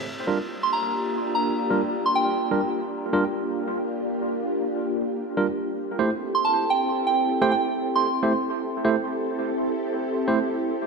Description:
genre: drum and bass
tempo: 168 BPM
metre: 4/4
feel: swing 54% on 16ths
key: G dorian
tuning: A4 = 441 Hz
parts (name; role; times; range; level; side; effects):
- soft string machine; sustained chords; 0.1-10.9 s; Bb3 to A4; -26 LUFS; equal; ensemble chorus, vintage 12-bit sampler grit
- tine electric piano; stabs; 0.3-10.4 s; G3 to C5; -27 LUFS; right 3 dB; fast stereo tremolo, vintage 12-bit sampler grit, dub echo
- soft synth bell; melody; 0.6-2.4, 6.3-8.2 s; G5 to C6; -25 LUFS; right 2 dB; chorus, dub echo
room: wet echo chamber reverb, RT60 1.9 s, small room ambience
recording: none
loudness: -22 LUFS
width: side -4 dB against mid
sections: 0.1-10.9 A section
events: filter sweep on string machine 0.1-10.9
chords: 0.1 Gm7; 5.8 Am7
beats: | 0.10 0.46 0.81 1.17 | 1.53 1.88 2.24 2.60 | 2.96 3.31 3.67 4.03 | 4.38 4.74 5.10 5.46 | 5.81 6.17 6.53 6.88 | 7.24 7.60 7.96 8.31 | 8.67 9.03 9.38 9.74 | 10.10 10.46 10.81

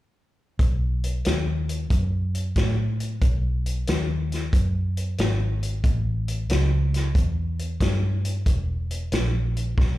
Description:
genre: electric blues shuffle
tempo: 92 BPM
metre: 4/4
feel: swing 68% on 8ths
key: unclear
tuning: A4 = 440 Hz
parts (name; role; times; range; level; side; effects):
- vintage muted fingered electric bass; bass; 0.6-10.0 s; E1 to A2; -23 LUFS; equal; none
- vintage drum kit; drums; 0.6-10.0 s; hi-hat, kick drum, snare drum; -25 LUFS; equal; none
room: little or no reverb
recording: live gig heard through the venue's PA, club reverb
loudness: -22 LUFS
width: side -16 dB against mid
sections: 0.6-10.0 A section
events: drum fill 9.8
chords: none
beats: | 0.59 1.25 1.91 2.56 | 3.22 3.88 4.53 5.19 | 5.84 6.50 7.15 7.81 | 8.47 9.12 9.78

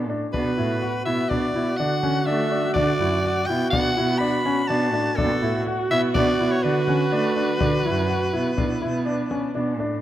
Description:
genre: contemporary instrumental, chamber music in an uneven meter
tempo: 124 BPM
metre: 5/4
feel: straight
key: B minor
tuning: A4 = 442 Hz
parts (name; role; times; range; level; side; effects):
- dark viola; second line; 0.0-9.8 s; D4 to F#4; -27 LUFS; right 1 dB; none
- dark cello; bass; 0.0-10.0 s; F#2 to A3; -25 LUFS; right 3 dB; none
- clear grand piano; arpeggios; 0.1-9.9 s; C#4 to F#4; -26 LUFS; left 2 dB; none
- raspy soprano saxophone; melody; 0.3-9.5 s; A4 to B5; -26 LUFS; equal; none
- frame drum; percussion; 0.3-9.9 s; none; -29 LUFS; left 3 dB; none
room: moderate concert hall reverb, RT60 2.2 s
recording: none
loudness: -20 LUFS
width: side -12 dB against mid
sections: 0.0-10.0 A section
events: none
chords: 0.0 Bm7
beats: | 0.34 0.82 1.31 1.79 2.27 | 2.76 3.24 3.73 4.21 4.70 | 5.18 5.67 6.15 6.64 7.12 | 7.61 8.09 8.58 9.06 9.55

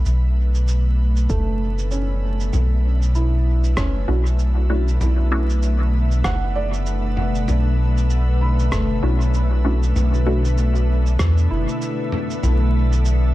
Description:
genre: ambient dub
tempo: 97 BPM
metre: 4/4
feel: swing 58% on 16ths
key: B minor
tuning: A4 = 440 Hz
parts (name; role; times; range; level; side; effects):
- soft additive organ-like pad; sustained chords; 0.0-13.3 s; B2 to E5; -26 LUFS; left 1 dB; ensemble chorus, built-in reverb
- felt-muted upright piano; arpeggios; 0.0-12.5 s; A3 to B5; -30 LUFS; right 4 dB; tape echo
- soft dub sub bass; bass; 0.0-13.3 s; F#1 to E2; -18 LUFS; equal; tube saturation
- lo-fi sampler-style drum kit; drums; 0.1-13.2 s; cabasa, rim click, toms; -30 LUFS; equal; dub echo
- electronic kick drum; drums; 1.3-11.3 s; none; -25 LUFS; equal; none
- filtered dub chord stab; stabs; 4.1-10.4 s; A3 to F#4; -28 LUFS; equal; phaser, dub echo
room: little or no reverb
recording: dark, warm production, vinyl crackle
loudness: -17 LUFS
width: side -16 dB against mid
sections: 0.0-12.4 A section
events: fade-in on ambient pad 0.0-12.4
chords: 0.0 Bm11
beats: | 0.06 0.68 1.30 1.92 | 2.54 3.15 3.77 4.39 | 5.01 5.63 6.25 6.87 | 7.48 8.10 8.72 9.34 | 9.96 10.58 11.20 11.81 | 12.43 13.05

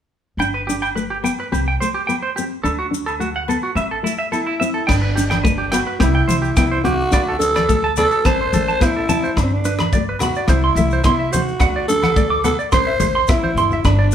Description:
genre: highlife guitar band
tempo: 107 BPM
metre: 4/4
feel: straight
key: G major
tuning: A4 = 440 Hz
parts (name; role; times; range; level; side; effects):
- nylon-string guitar; accompaniment; 0.4-14.1 s; A3 to D4; -24 LUFS; left 4 dB; none
- semi-hollow electric guitar; arpeggios; 0.4-14.1 s; E4 to D6; -21 LUFS; right 4 dB; none
- upright bass; bass; 0.4-14.1 s; G1 to C3; -22 LUFS; equal; none
- agogo bells; percussion; 0.4-14.0 s; none; -32 LUFS; left 4 dB; none
- maracas; percussion; 0.4-14.1 s; none; -33 LUFS; left 7 dB; none
- growling alto saxophone; melody; 4.3-14.1 s; C4 to C5; -20 LUFS; equal; none
- tight funk drum kit; drums; 4.9-14.0 s; crash cymbal, hi-hat, kick drum, rim click; -20 LUFS; equal; none
- congas; percussion; 5.3-13.8 s; none; -25 LUFS; left 1 dB; none
room: moderate large studio reverb, RT60 0.9 s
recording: band playing live in one room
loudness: -15 LUFS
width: side -9 dB against mid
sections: 0.4-4.9 A section; 4.9-14.1 B section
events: drum fill 13.4-13.8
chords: 0.4 G; 1.5 C5; 2.6 D; 3.8 Am; 4.9 G; 6.0 C; 7.1 D5; 8.3 Am; 9.4 G; 10.5 C; 11.6 D; 12.7 Am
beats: | 0.40 0.96 1.52 2.08 | 2.65 3.21 3.77 4.33 | 4.89 5.45 6.01 6.57 | 7.13 7.69 8.25 8.81 | 9.37 9.93 10.49 11.05 | 11.61 12.17 12.73 13.29 | 13.85

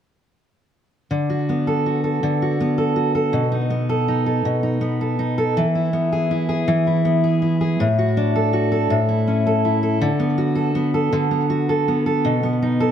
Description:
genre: pop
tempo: 54 BPM (dotted quarters)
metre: 6/8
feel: straight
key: D major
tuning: A4 = 440 Hz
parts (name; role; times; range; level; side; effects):
- fingerpicked steel-string acoustic guitar; solo; 1.1-12.9 s; A2 to A4; -17 LUFS; equal; ping-pong delay
room: light reverb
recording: none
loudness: -17 LUFS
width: side -9 dB against mid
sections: 1.1-10.0 A section; 10.0-12.9 B section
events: none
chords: 1.1 D6; 3.3 B7; 5.6 E; 7.8 D/A; 8.9 A; 10.0 D6; 12.3 B7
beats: | 1.11 2.22 | 3.34 4.45 | 5.57 6.68 | 7.80 8.91 | 10.03 11.14 | 12.25

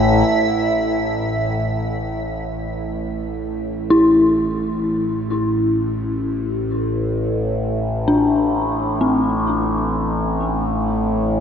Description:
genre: dark ambient drone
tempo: free time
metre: none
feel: none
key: A minor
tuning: A4 = 438 Hz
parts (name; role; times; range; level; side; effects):
- overtone-sweeping drone; drone; 0.0-11.4 s; A1 to A2; -20 LUFS; equal; chorus, built-in reverb
- dark detuned synth bell; arpeggios; 3.9-11.4 s; C4 to E4; -19 LUFS; left 2 dB; chorus, diffuse ambient delay
room: wet huge ambient reverb, RT60 7.9 s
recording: in a vast, echoing space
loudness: -17 LUFS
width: side -8 dB against mid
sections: 0.3-11.4 A section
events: fade-in on synth drone 0.3-11.4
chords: 0.3 Am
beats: free time

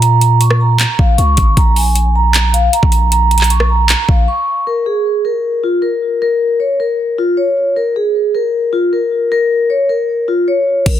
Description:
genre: hip hop, trap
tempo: 155 BPM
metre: 4/4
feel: half-time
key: Bb minor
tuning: A4 = 440 Hz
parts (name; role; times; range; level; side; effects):
- vibraphone with medium mallets; melody; 0.0-11.0 s; F4 to Db6; -13 LUFS; equal; low-pass filter, digital delay
- warm 808-style bass; bass; 0.0-4.3, 10.9-11.0 s; Ab1 to Bb2; -13 LUFS; equal; none
- trap drum kit; drums; 0.0-4.2, 10.9-11.0 s; crash cymbal, handclaps, hi-hat, kick drum, rim click; -14 LUFS; equal; none
room: little or no reverb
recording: dense, heavily limited modern master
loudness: -11 LUFS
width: side -11 dB against mid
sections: 0.0-4.7 A section; 4.7-10.9 B section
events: break 4.3-4.7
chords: 0.0 Bbm; 4.7 N.C.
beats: | 0.02 0.41 0.80 1.18 | 1.57 1.96 2.34 2.73 | 3.12 3.51 3.89 4.28 | 4.67 5.05 5.44 5.83 | 6.21 6.60 6.99 7.38 | 7.76 8.15 8.54 8.93 | 9.31 9.70 10.09 10.47 | 10.86

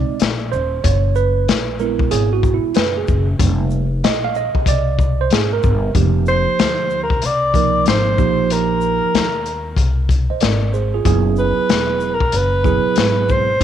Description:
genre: hip hop, jazz-hop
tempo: 94 BPM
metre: 4/4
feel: swing 64% on 16ths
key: unclear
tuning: A4 = 440 Hz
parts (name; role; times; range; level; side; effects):
- mellow tine electric piano; accompaniment; 0.0-13.6 s; F3 to F5; -20 LUFS; right 11 dB; medium stereo tremolo
- upright bass; bass; 0.0-13.6 s; Eb1 to Eb2; -19 LUFS; left 1 dB; none
- crunchy breakbeat drum kit; drums; 0.2-13.6 s; hi-hat, kick drum, shaker, snare drum; -19 LUFS; left 4 dB; none
- breathy alto saxophone; melody; 6.3-13.6 s; Bb4 to D5; -18 LUFS; equal; none
room: light reverb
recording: 1960s-style stereo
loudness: -14 LUFS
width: side -10 dB against mid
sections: 0.0-6.0 A section; 6.0-13.6 B section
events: tine electric piano solo 0.0-6.0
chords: 0.0 Bb9sus4; 0.8 Gb9sus4; 3.4 F9sus4; 8.2 Bb9sus4; 11.1 Gb9sus4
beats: 0.20 | 0.84 1.48 2.12 2.76 | 3.40 4.04 4.67 5.31 | 5.95 6.59 7.23 7.87 | 8.50 9.14 9.78 10.42 | 11.06 11.70 12.33 12.97 | 13.61

